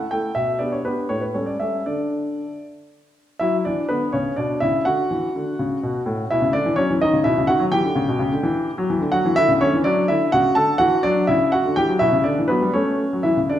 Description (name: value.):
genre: classical-period piano sonatina.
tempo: 83 BPM (dotted quarters).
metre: 6/8.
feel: rubato.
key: D major.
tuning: A4 = 440 Hz.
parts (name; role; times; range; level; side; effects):
clear grand piano; solo; 0.0-13.6 s; A2 to A5; -18 LUFS; equal; none.
room: wet recital hall reverb, RT60 1.5 s.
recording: minimal, uncompressed stereo recording.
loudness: -18 LUFS.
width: side -11 dB against mid.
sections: 0.0-3.4 A section; 3.4-13.6 A section.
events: none.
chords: 0.4 G/B; 1.1 A7; 1.9 D5; 3.4 D; 4.1 Bmadd9; 4.9 D; 6.3 E5/B; 7.0 B; 7.7 Em; 9.1 D; 11.3 Em13/C#; 12.0 G/B; 12.7 A.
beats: | 0.36 1.10 | 1.87 2.63 | 3.40 4.13 | 4.86 5.59 | 6.30 7.01 | 7.72 8.43 | 9.14 9.85 | 10.56 11.28 | 12.01 12.74 | 13.51.